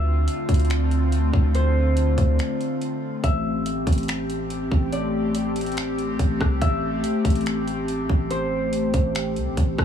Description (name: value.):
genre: hip hop, atmospheric cloud-rap.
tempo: 142 BPM.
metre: 4/4.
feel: half-time.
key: A minor.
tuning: A4 = 440 Hz.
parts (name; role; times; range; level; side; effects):
concert harp; melody; 0.0-9.8 s; C5 to E5; -30 LUFS; right 1 dB; digital delay.
airy breathy pad; sustained chords; 0.0-9.8 s; D3 to G4; -25 LUFS; left 2 dB; chorus, sidechain pumping.
warm 808-style bass; bass; 0.0-9.8 s; G1 to D2; -24 LUFS; right 1 dB; none.
trap drum kit; drums; 0.3-9.8 s; finger snaps, hi-hat, kick drum, rim click; -23 LUFS; equal; none.
room: little or no reverb.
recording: small room ambience.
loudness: -20 LUFS.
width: side -9 dB against mid.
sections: 0.0-3.2 A section; 3.2-9.8 B section.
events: break 2.4-3.2.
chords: 0.0 Dm7; 3.2 Am7.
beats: 0.28 0.70 1.12 | 1.55 1.97 2.39 2.81 | 3.24 3.66 4.08 4.50 | 4.93 5.35 5.77 6.19 | 6.62 7.04 7.46 7.88 | 8.31 8.73 9.15 9.57.